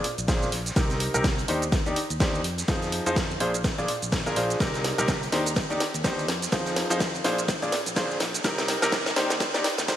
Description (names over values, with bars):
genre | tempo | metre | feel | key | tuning
piano house | 125 BPM | 4/4 | swing 58% on 16ths | unclear | A4 = 440 Hz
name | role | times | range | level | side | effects
bright grand piano | riff | 0.0-10.0 s | Bb2 to D5 | -27 LUFS | equal | sidechain pumping, low-pass filter, digital delay
garage drum kit | drums | 0.0-10.0 s | hi-hat, shaker, snare drum | -28 LUFS | equal | high-pass filter on hats, studio reverb, high-pass filter on perc, high-pass filter on snare, gated reverb
raw garage drum kit | drums | 0.0-10.0 s | hi-hat, snare drum | -39 LUFS | equal | none
fingered electric bass | bass | 0.2-10.0 s | Bb1 to F2 | -35 LUFS | equal | tube saturation, sidechain pumping, low-pass filter
electronic kick drum | drums | 0.3-10.0 s | none | -27 LUFS | equal | overdrive, studio reverb
room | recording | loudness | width
moderate lush hall reverb, RT60 2.4 s | bright 1980s-style digital production, high-pass filter | -23 LUFS | side -11 dB against mid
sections
0.0-10.0 A section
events
build-up 0.0-10.0; drum fill 0.0-10.0; filter sweep 0.0-10.0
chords
0.0 Bb7; 0.8 Cm7; 1.5 Ebmaj7; 2.4 Fm7; 3.4 Bb7; 4.6 Cm7; 5.3 Ebmaj7; 6.3 Fm7; 7.2 Bb7; 8.4 Cm7; 9.2 Ebmaj7